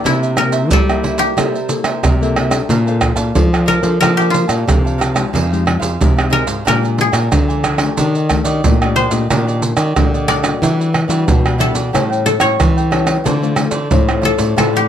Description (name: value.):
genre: samba and choro.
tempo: 91 BPM.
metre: 4/4.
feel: straight.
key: unclear.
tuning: A4 = 435 Hz.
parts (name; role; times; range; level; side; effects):
koto; melody; 0.0-14.9 s; E4 to E5; -18 LUFS; left 2 dB; none.
cavaquinho; accompaniment; 0.0-14.9 s; D4 to A5; -24 LUFS; right 5 dB; none.
nylon-string guitar; accompaniment; 0.0-14.9 s; A2 to C5; -22 LUFS; left 9 dB; none.
nylon-string guitar; bass; 0.1-14.9 s; F2 to G3; -17 LUFS; left 1 dB; none.
maracas, surdo, pandeiro and tamborim; percussion; 0.1-14.9 s; none; -16 LUFS; right 3 dB; none.
room: light reverb.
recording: close, detailed microphones.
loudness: -12 LUFS.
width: side -10 dB against mid.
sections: 0.0-2.7 A section; 2.7-14.9 B section.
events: none.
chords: 0.1 C13; 2.7 Bbmaj9; 5.3 Fm9; 6.7 Bb6; 8.0 Ebmaj7#11; 10.6 Em9; 11.9 A7; 13.3 Dm7.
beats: | 0.05 0.71 1.38 2.04 | 2.70 3.36 4.02 4.68 | 5.35 6.01 6.67 7.33 | 7.99 8.65 9.31 9.97 | 10.62 11.28 11.94 12.60 | 13.26 13.92 14.57.